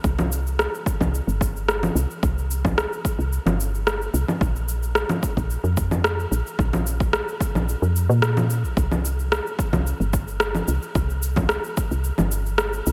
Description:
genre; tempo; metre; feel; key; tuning
organic downtempo; 110 BPM; 4/4; straight; unclear; A4 = 441 Hz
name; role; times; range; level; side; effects
woody FM bass; bass; 0.0-12.9 s; G1 to Bb2; -25 LUFS; equal; sidechain pumping
electronic kick drum; drums; 0.0-11.9 s; none; -26 LUFS; equal; overdrive
electronic shaker, congas and rim click; drums; 0.0-12.9 s; none; -27 LUFS; equal; overdrive
room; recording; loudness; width
light reverb; none; -23 LUFS; mono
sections
0.0-8.8 A section; 8.8-12.9 A section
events
none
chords
none

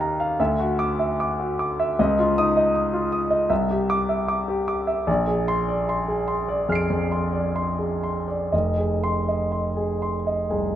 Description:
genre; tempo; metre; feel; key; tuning
classical, impressionist solo piano; 59-80 BPM; 4/4; rubato; F dorian; A4 = 440 Hz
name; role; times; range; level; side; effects
clear grand piano; solo; 0.0-10.8 s; F1 to D7; -21 LUFS; equal; none
room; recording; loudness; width
light reverb; close, detailed microphones; -21 LUFS; side -11 dB against mid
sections
0.0-10.8 A section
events
none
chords
0.4 Dadd9; 2.0 Dbadd9; 3.5 Cadd9; 5.1 Bb9; 8.5 Fm7

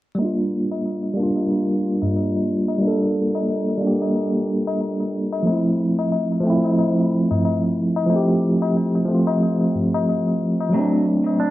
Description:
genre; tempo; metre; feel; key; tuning
trip hop; 91 BPM; 4/4; swing 56% on 16ths; G dorian; A4 = 441 Hz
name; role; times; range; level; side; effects
tine electric piano; accompaniment; 0.1-11.5 s; F3 to A4; -18 LUFS; equal; medium stereo tremolo, harmonic tremolo, cassette tape, tape echo
tabla; percussion; 0.2-11.5 s; none; -28 LUFS; left 5 dB; none
clean electric guitar; arpeggios; 10.7-11.5 s; F#3 to D4; -26 LUFS; right 4 dB; cassette tape, tape echo
room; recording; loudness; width
wet studio reverb, RT60 0.5 s; home recording on cassette, vinyl crackle, low-pass filter; -18 LUFS; side -16 dB against mid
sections
0.2-11.5 A section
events
filter sweep 0.2-11.5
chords
0.2 Gm7; 5.5 Fmaj7; 10.7 D7

